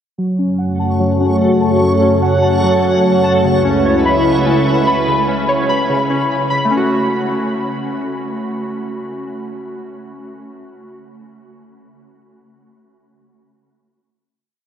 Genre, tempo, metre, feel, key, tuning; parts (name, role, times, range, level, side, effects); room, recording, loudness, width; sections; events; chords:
hip hop, atmospheric cloud-rap; 147 BPM; 4/4; half-time; F# minor; A4 = 440 Hz
warbly tape-like pad; sustained chords; 0.6-5.1 s; C#2 to C#5; -15 LUFS; equal; chorus, built-in reverb, phaser, low-pass filter
warbly lo-fi synth keys; arpeggios; 0.2-11.0 s; C#3 to B5; -17 LUFS; equal; chorus, low-pass filter, analog delay
backwards swelling texture; texture; 0.9-5.1 s; A4 to C#6; -26 LUFS; equal; built-in reverb
wet huge ambient reverb, RT60 7.3 s; dreamy mix soaked in reverb; -13 LUFS; side -9 dB against mid
0.2-6.7 breakdown; 6.7-10.0 final chord
filter sweep 0.2-6.7
0.2 F#m; 3.4 C#m7; 6.7 F#m